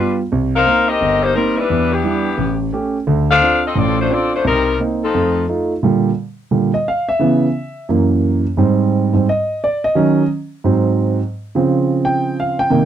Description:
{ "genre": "jazz", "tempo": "174 BPM", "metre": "4/4", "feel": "swing 64% on 8ths", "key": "unclear", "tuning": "A4 = 441 Hz", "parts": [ { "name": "clear saxophone section", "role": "melody", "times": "0.0-5.5 s", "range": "E3 to F5", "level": "-15 LUFS", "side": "left 4 dB", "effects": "none" }, { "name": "warm concert grand piano", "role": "accompaniment", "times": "0.0-12.9 s", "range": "G1 to G5", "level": "-15 LUFS", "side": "right 2 dB", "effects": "none" } ], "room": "little or no reverb", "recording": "dry, close 1970s-style studio recording", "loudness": "-14 LUFS", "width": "side -10 dB against mid", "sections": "0.0-5.8 A section; 5.8-12.9 B section", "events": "grand piano solo 5.8-12.9", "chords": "0.3 Cm7; 1.7 Em7; 2.4 A7; 3.1 Dm7; 4.4 Cm7; 5.1 F7; 5.8 Bb6; 7.2 Dbm7; 7.9 Gb7; 8.6 Abmaj7; 10.0 Ebm7; 10.6 Ab7; 11.3 Dbmaj7" }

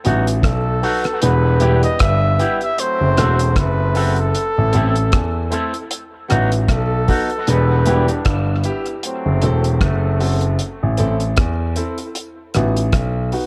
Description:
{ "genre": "dub reggae", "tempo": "77 BPM", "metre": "4/4", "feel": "swing 56% on 16ths", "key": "E harmonic minor", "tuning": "A4 = 440 Hz", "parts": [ { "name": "electric guitar with an envelope filter", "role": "accompaniment", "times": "0.0-8.1 s", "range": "F#3 to A4", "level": "-28 LUFS", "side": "equal", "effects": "dub echo" }, { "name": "warm upright piano", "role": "stabs", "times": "0.0-13.5 s", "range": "B3 to A4", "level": "-28 LUFS", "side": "equal", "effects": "dub echo" }, { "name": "cloth-damped thuddy drum kit", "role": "drums", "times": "0.0-13.5 s", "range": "hi-hat, kick drum, rim click", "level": "-23 LUFS", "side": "equal", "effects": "none" }, { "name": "dark baby grand piano", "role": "bass", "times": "0.1-13.3 s", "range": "E1 to E2", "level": "-19 LUFS", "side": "equal", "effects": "none" }, { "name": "warm flugelhorn", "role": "melody", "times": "0.4-8.1 s", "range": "A4 to E5", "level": "-24 LUFS", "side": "equal", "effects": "dub echo" }, { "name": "warm trombone section", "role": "second line", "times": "1.2-10.4 s", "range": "C3 to E4", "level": "-31 LUFS", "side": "equal", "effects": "dub echo" } ], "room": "light reverb, small room ambience", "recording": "none", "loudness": "-17 LUFS", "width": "mono", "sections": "0.0-13.5 A section", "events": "none", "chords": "0.0 B; 1.2 Em; 2.8 F#dim; 4.3 Am; 5.9 B; 7.5 Em; 9.0 F#dim; 10.6 Am; 12.2 B" }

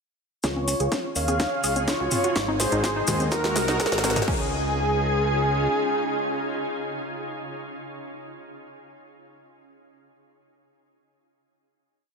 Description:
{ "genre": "progressive house", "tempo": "125 BPM", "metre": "4/4", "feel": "straight", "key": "Db major", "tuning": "A4 = 440 Hz", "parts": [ { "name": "soft supersaw", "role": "melody", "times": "0.4-7.3 s", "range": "F4 to F5", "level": "-27 LUFS", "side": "equal", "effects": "sidechain pumping, low-pass filter, dub echo" }, { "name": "airy dreamy lead", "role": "second line", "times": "0.4-7.3 s", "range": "Ab4 to F5", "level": "-31 LUFS", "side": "equal", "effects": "chorus, sidechain pumping, dub echo" }, { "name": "shimmering ambient pad", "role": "sustained chords", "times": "1.1-7.3 s", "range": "Db3 to Ab4", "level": "-32 LUFS", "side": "right 1 dB", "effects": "chorus, built-in reverb, sidechain pumping" }, { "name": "wide unison pluck", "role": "arpeggios", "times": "0.4-7.3 s", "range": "Ab3 to Ab4", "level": "-31 LUFS", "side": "right 1 dB", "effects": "sidechain pumping, dub echo" }, { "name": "fat analog bass", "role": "bass", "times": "0.4-5.7 s", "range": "Ab1 to Eb2", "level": "-28 LUFS", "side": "equal", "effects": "sidechain pumping" }, { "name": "electronic kick drum", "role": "drums", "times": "0.4-4.4 s", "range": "none", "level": "-30 LUFS", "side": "equal", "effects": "overdrive, high-pass filter on kick, high-pass filter on room" }, { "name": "house drum kit", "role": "drums", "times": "0.4-4.4 s", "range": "crash cymbal, hi-hat, snare drum", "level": "-28 LUFS", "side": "equal", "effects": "overdrive" }, { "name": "maracas", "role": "percussion", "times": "0.4-4.3 s", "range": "none", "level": "-32 LUFS", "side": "left 3 dB", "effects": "none" }, { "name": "electronic congas and toms", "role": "percussion", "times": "0.6-4.3 s", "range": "none", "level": "-33 LUFS", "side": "right 2 dB", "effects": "overdrive, sidechain pumping on perc, sidechain pumping on toms" } ], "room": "moderate lush hall reverb, RT60 1.9 s, digital ambience", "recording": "none", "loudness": "-22 LUFS", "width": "side -5 dB against mid", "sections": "0.4-4.3 build; 4.3-8.1 final chord", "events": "build-up 0.4-4.3; drum fill 0.4-4.3; filter sweep on synth pluck 0.4-4.3; filter sweep on supersaw synth 0.4-4.3; filter sweep on digital synth lead 0.4-4.3", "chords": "0.4 Dbadd9; 2.4 Ab; 4.3 Dbadd9" }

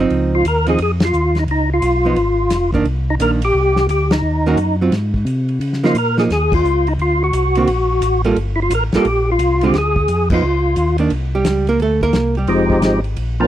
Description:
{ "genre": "soul jazz organ trio", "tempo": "175 BPM", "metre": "4/4", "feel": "swing 64% on 8ths", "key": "unclear", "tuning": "A4 = 439 Hz", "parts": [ { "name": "archtop guitar, miked and amplified", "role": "accompaniment", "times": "0.0-12.5 s", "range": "D3 to Bb4", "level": "-17 LUFS", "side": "right 4 dB", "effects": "none" }, { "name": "mellow tonewheel organ", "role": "bass", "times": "0.0-13.5 s", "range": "F1 to Db3", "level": "-18 LUFS", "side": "equal", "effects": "chorus vibrato, slow rotary speaker" }, { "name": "warm soul drum kit", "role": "drums", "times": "0.1-13.3 s", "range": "crash cymbal, hi-hat, kick drum, ride cymbal, snare drum", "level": "-24 LUFS", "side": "left 1 dB", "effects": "none" }, { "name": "percussive tonewheel organ", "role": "melody", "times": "0.3-13.5 s", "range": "F3 to Bb4", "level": "-17 LUFS", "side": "left 1 dB", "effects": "slow rotary speaker, overdrive, chorus vibrato" } ], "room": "studio reverb", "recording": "dry, close 1970s-style studio recording", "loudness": "-14 LUFS", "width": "side -12 dB against mid", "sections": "0.1-11.1 A section; 11.1-13.5 B section", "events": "band accent 1.0, 4.1, 6.5, 10.3; hollow-body jazz guitar solo 11.1-13.5", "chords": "0.1 Dbmaj9; 1.5 Db9; 2.9 Cm9; 4.2 Ebm7; 4.9 Ab; 5.6 Db69; 7.0 D7b13; 8.4 Gm9; 9.7 Ddim; 10.4 Dbadd9; 11.1 Csus2; 12.5 Fm7" }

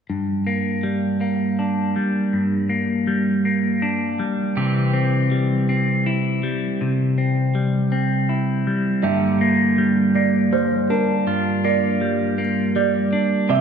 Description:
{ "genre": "rock", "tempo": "81 BPM", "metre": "3/4", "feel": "straight", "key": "G dorian", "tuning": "A4 = 440 Hz", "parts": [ { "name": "clean electric guitar", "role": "arpeggios", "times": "0.1-13.6 s", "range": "G2 to E4", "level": "-18 LUFS", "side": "equal", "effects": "phaser" }, { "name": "pedal steel guitar", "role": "sustained chords", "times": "4.6-13.6 s", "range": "D3 to G4", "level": "-28 LUFS", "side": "right 3 dB", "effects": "none" }, { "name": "felt-muted upright piano", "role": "arpeggios", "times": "9.0-13.6 s", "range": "Bb4 to E5", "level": "-24 LUFS", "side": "right 6 dB", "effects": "none" } ], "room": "wet scoring stage reverb, RT60 1.5 s", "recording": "recorded in a church or concert hall", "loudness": "-18 LUFS", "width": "side -7 dB against mid", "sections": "0.1-9.0 A section; 9.0-13.6 B section", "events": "none", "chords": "0.1 Gm; 4.6 C; 9.0 Gm" }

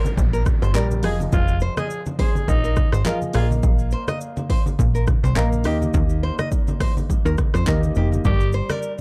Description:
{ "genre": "afrobeats", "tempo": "104 BPM", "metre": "4/4", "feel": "swing 55% on 16ths", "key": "F dorian", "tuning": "A4 = 440 Hz", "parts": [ { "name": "growling alto saxophone", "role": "melody", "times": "0.0-3.5, 8.3-8.9 s", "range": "Eb4 to Bb4", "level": "-32 LUFS", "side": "equal", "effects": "digital delay" }, { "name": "dark concert grand piano", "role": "accompaniment", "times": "0.0-9.0 s", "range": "Eb3 to F5", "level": "-31 LUFS", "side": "equal", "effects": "none" }, { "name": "congas", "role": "percussion", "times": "0.0-9.0 s", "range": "none", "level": "-32 LUFS", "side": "equal", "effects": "none" }, { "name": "downlifter", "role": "sound effects", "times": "0.0-3.6 s", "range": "none", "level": "-42 LUFS", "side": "equal", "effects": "none" }, { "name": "deep house drum kit", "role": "drums", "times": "0.1-9.0 s", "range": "handclaps, hi-hat, kick drum, rim click, shaker", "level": "-24 LUFS", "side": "equal", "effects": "none" }, { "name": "plucky analog bass", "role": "bass", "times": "0.2-8.6 s", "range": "F1 to F2", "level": "-23 LUFS", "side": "equal", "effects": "none" }, { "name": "nylon-string guitar", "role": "riff", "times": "0.3-8.8 s", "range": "G4 to Eb5", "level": "-32 LUFS", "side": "equal", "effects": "digital delay" } ], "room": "little or no reverb", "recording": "dark, warm production", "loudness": "-20 LUFS", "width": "mono", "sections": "0.0-9.0 A section", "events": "none", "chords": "0.0 Gm; 1.0 Fm7; 3.3 Bbsus4; 5.7 Eb; 8.2 Gm" }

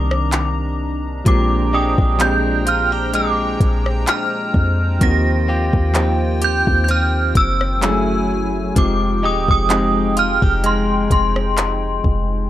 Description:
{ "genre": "contemporary R&B", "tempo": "64 BPM", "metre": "4/4", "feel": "swing 54% on 16ths", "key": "unclear", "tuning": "A4 = 440 Hz", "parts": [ { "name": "synth chime", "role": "melody", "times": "0.0-12.5 s", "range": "C6 to Bb6", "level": "-20 LUFS", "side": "right 1 dB", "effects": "ensemble chorus, phaser, analog delay" }, { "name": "soft electric-piano-like synth keys", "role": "accompaniment", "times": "0.0-12.5 s", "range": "Eb3 to G#4", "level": "-24 LUFS", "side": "right 1 dB", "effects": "chorus" }, { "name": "hollow soft pad", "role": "sustained chords", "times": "0.0-12.5 s", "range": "Eb3 to Bb5", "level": "-26 LUFS", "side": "left 1 dB", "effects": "chorus, sidechain pumping" }, { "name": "direct-recorded clean electric guitar", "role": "arpeggios", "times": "0.0-12.5 s", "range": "Bb2 to G4", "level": "-25 LUFS", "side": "left 2 dB", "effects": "none" }, { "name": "warm 808-style bass", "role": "bass", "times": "0.0-12.5 s", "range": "Eb1 to F2", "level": "-20 LUFS", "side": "equal", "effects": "none" }, { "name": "smooth R&B drum kit", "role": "drums", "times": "0.1-12.3 s", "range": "handclaps, hi-hat, kick drum, rim click", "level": "-18 LUFS", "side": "equal", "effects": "none" } ], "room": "light reverb", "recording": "dry, gritty hardware recording", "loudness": "-15 LUFS", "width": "side -13 dB against mid", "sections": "0.0-12.5 A section", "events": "none", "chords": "0.0 Cm9; 1.3 Bb13; 5.0 Eb69; 7.8 F#m9; 8.8 Fm9" }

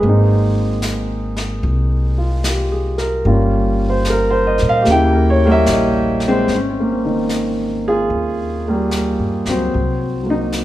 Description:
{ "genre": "jazz ballad", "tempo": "74 BPM", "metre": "4/4", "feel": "swing 69% on 8ths", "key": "Ab major from 6.5 s", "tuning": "A4 = 435 Hz", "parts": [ { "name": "warm concert grand piano", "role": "accompaniment", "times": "0.0-10.6 s", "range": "Db3 to G5", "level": "-16 LUFS", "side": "equal", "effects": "none" }, { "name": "upright bass", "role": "bass", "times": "0.0-10.6 s", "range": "G1 to Bb2", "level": "-19 LUFS", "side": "equal", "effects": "none" }, { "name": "jazz brush drum kit", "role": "drums", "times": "0.0-10.6 s", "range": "brushed snare drum, hi-hat, snare drum", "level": "-27 LUFS", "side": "left 1 dB", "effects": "none" } ], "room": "moderate recital hall reverb, RT60 1.7 s", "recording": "recorded in a church or concert hall", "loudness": "-14 LUFS", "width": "side -14 dB against mid", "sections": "0.0-6.5 A section; 6.5-10.6 B section", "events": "none", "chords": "0.0 Abadd9; 3.3 Gm7b5; 4.9 Eb7b9; 6.5 Abmaj9; 9.7 Cm7b5" }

